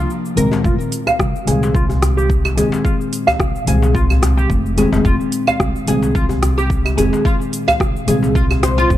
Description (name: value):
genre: organic downtempo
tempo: 109 BPM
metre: 4/4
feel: swing 54% on 16ths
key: F minor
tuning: A4 = 440 Hz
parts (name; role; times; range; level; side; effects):
- muted felt-like synth keys; accompaniment; 0.0-9.0 s; Bb2 to D4; -20 LUFS; left 2 dB; chorus, sidechain pumping, digital delay
- oud; arpeggios; 0.0-8.9 s; F4 to F5; -20 LUFS; equal; low-pass filter, digital delay
- upright bass; bass; 0.0-9.0 s; F1 to C2; -18 LUFS; equal; none
- organic electronic drum kit; drums; 0.1-9.0 s; cabasa, claves, hi-hat, rim click; -24 LUFS; right 1 dB; none
- djembe; percussion; 0.5-8.7 s; none; -27 LUFS; left 2 dB; none
- electronic kick drum; drums; 0.6-9.0 s; none; -18 LUFS; equal; none
room: light reverb, studio ambience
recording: dark, warm production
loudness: -14 LUFS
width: side -13 dB against mid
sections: 0.6-9.0 A section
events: filter sweep on oud 0.6-9.0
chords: 0.0 Bb; 0.6 Fm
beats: 0.10 | 0.65 1.20 1.75 2.30 | 2.85 3.40 3.95 4.50 | 5.05 5.60 6.15 6.70 | 7.25 7.80 8.35 8.90